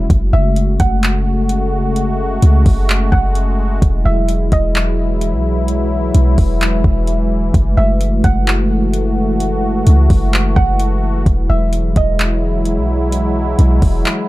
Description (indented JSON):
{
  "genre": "hip hop, atmospheric cloud-rap",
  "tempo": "129 BPM",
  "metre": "4/4",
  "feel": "half-time",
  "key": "F# minor",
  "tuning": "A4 = 441 Hz",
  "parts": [
    { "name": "sweeping resonant pad", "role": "sustained chords", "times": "0.0-14.3 s", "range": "C#3 to F#4", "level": "-18 LUFS", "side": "left 1 dB", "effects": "chorus, sidechain pumping" },
    { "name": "clean 808-style bass", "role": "bass", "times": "0.0-14.0 s", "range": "E1 to C#2", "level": "-14 LUFS", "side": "equal", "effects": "none" },
    { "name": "smooth R&B drum kit", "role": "drums", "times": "0.1-14.2 s", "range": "handclaps, hi-hat, kick drum", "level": "-16 LUFS", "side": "equal", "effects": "none" },
    { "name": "soft round pluck", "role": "melody", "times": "0.3-4.7, 7.8-12.2 s", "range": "D#5 to F#5", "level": "-23 LUFS", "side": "right 3 dB", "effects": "chorus, tape echo" }
  ],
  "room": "digital ambience",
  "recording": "dark, warm production",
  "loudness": "-12 LUFS",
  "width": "side -17 dB against mid",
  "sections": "0.0-14.3 A section",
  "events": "break 14.1",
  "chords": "0.1 F#madd9; 3.8 Eadd9; 7.5 F#madd9; 11.3 Eadd9",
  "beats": "| 0.10 0.56 1.03 1.50 | 1.96 2.43 2.89 3.36 | 3.82 4.29 4.75 5.22 | 5.68 6.15 6.61 7.08 | 7.54 8.01 8.47 8.94 | 9.40 9.87 10.33 10.80 | 11.26 11.73 12.19 12.66 | 13.12 13.59 14.05"
}